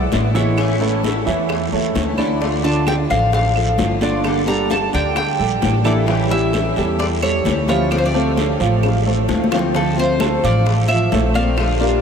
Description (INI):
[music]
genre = latin, Cuban son and guajira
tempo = 131 BPM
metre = 4/4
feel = straight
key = D harmonic minor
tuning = A4 = 440 Hz
[part]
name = Cuban tres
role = melody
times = 0.0-12.0 s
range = A4 to Bb5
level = -23 LUFS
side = left 1 dB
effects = diffuse ambient delay
[part]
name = warm grand piano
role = arpeggios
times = 0.0-12.0 s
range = D3 to F5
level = -20 LUFS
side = right 4 dB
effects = analog chorus, diffuse ambient delay
[part]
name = upright bass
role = bass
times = 0.0-12.0 s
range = G1 to E2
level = -20 LUFS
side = equal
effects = none
[part]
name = picked acoustic archtop guitar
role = accompaniment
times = 0.1-12.0 s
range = D3 to A4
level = -24 LUFS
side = left 5 dB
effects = analog chorus
[part]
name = bongos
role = percussion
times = 0.1-11.8 s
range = none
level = -27 LUFS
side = left 9 dB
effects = none
[part]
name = congas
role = percussion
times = 0.1-12.0 s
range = none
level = -27 LUFS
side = left 4 dB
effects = none
[part]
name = guiro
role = percussion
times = 0.1-12.0 s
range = none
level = -32 LUFS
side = right 5 dB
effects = none
[part]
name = claves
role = percussion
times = 0.6-11.8 s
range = none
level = -35 LUFS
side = right 8 dB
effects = none
[sound]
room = moderate huge ambient reverb, RT60 7.9 s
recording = dreamy mix soaked in reverb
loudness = -15 LUFS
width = side -7 dB against mid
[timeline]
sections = 0.0-9.7 A section; 9.7-12.0 B section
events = drum fill 8.8-9.7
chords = 0.0 E7; 0.6 A; 2.4 Dm; 4.2 Gmadd9; 6.1 A7; 7.9 Dm7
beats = 0.12 | 0.58 1.03 1.49 1.95 | 2.41 2.87 3.33 3.79 | 4.25 4.70 5.16 5.62 | 6.08 6.54 7.00 7.45 | 7.91 8.37 8.83 9.29 | 9.74 10.20 10.66 11.12 | 11.57